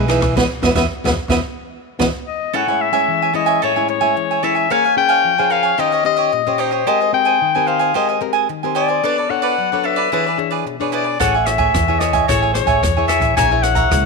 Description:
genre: samba and choro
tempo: 111 BPM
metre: 4/4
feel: straight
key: unclear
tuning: A4 = 440 Hz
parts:
  - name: breathy trombone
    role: melody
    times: 0.0-2.1 s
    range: E3 to B3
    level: -21 LUFS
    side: equal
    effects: none
  - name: cavaquinho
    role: accompaniment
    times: 0.0-14.0 s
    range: D4 to A#5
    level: -19 LUFS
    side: right 16 dB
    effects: none
  - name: nylon-string guitar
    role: accompaniment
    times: 0.0-14.1 s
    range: A2 to C#5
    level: -24 LUFS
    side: left 12 dB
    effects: none
  - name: upright bass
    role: bass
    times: 0.0-2.1, 11.2-14.1 s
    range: A1 to E2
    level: -21 LUFS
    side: right 1 dB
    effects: none
  - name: open jazz drum kit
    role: drums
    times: 0.1-2.1, 11.2-14.0 s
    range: hi-hat, kick drum, ride cymbal, rim click, snare drum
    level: -21 LUFS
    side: right 2 dB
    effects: none
  - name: clear clarinet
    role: second line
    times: 2.3-14.1 s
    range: B#4 to G#5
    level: -17 LUFS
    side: left 11 dB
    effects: none
room: moderate echo chamber reverb, RT60 2.1 s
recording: 1960s-style stereo with parts hard left and right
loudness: -14 LUFS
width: side -3 dB against mid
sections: 0.0-2.5 A section; 2.5-14.1 B section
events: band accent 0.4-2.5; clarinet solo 2.5-14.1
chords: 0.0 Emaj7; 2.5 Amaj7; 4.7 A#m9; 5.8 D#6; 6.9 G#maj9; 9.0 Bm9; 10.1 E6; 11.2 Amaj7; 13.4 A#m7b5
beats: | 0.37 0.91 1.46 2.00 | 2.54 3.08 3.62 4.16 | 4.71 5.25 5.79 6.33 | 6.87 7.41 7.95 8.49 | 9.03 9.57 10.12 10.66 | 11.20 11.74 12.28 12.82 | 13.37 13.91

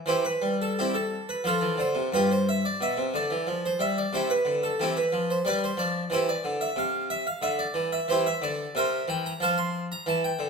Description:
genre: classical, baroque-style suite movement for harpsichord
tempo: 90 BPM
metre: 3/4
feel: rubato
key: C major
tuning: A4 = 440 Hz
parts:
  - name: harpsichord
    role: solo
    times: 0.1-10.5 s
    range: G2 to C6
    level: -24 LUFS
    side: right 1 dB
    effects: none
room: wet stone room reverb, RT60 1.3 s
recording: close, detailed microphones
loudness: -24 LUFS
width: side -5 dB against mid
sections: 0.1-10.5 A section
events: none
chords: 0.1 C/E; 1.4 F; 2.1 G7; 4.1 C; 5.5 G7; 6.1 C; 8.1 C7; 9.4 F5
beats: | 0.06 0.76 1.44 | 2.12 2.80 3.47 | 4.13 4.80 5.47 | 6.13 6.78 7.43 | 8.08 8.75 9.41 | 10.06

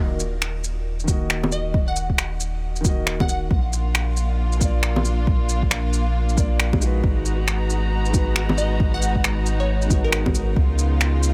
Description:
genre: future garage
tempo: 136 BPM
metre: 4/4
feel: swing 61% on 16ths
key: Eb minor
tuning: A4 = 441 Hz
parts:
  - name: felt-muted upright piano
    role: accompaniment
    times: 0.0-10.6 s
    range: Bb2 to Eb5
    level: -34 LUFS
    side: equal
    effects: vintage 12-bit sampler grit, sidechain pumping, tape echo
  - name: soft dub sub bass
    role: bass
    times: 0.0-11.3 s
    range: Eb1 to Db2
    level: -25 LUFS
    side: equal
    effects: sidechain pumping
  - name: electronic shaker, finger snaps and bongos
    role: drums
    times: 0.2-11.3 s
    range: none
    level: -27 LUFS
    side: equal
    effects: overdrive
  - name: electronic kick drum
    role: drums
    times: 1.1-10.7 s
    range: none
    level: -24 LUFS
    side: equal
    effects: overdrive
  - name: glassy wavetable pluck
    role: melody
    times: 1.5-3.6, 8.6-10.6 s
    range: Bb4 to Gb5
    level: -33 LUFS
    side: equal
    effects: chorus, digital delay
  - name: warm studio string section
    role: sustained chords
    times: 3.5-11.3 s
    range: Db3 to Bb5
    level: -31 LUFS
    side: equal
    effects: sidechain pumping
room: little or no reverb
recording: none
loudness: -21 LUFS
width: mono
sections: 0.0-11.3 A section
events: none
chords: 0.0 Ebm; 3.5 Bb; 7.0 Abm7; 10.6 Db7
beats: 0.42 0.86 1.30 | 1.74 2.18 2.62 3.06 | 3.51 3.95 4.39 4.83 | 5.27 5.71 6.15 6.59 | 7.04 7.48 7.92 8.36 | 8.80 9.24 9.68 10.12 | 10.56 11.01

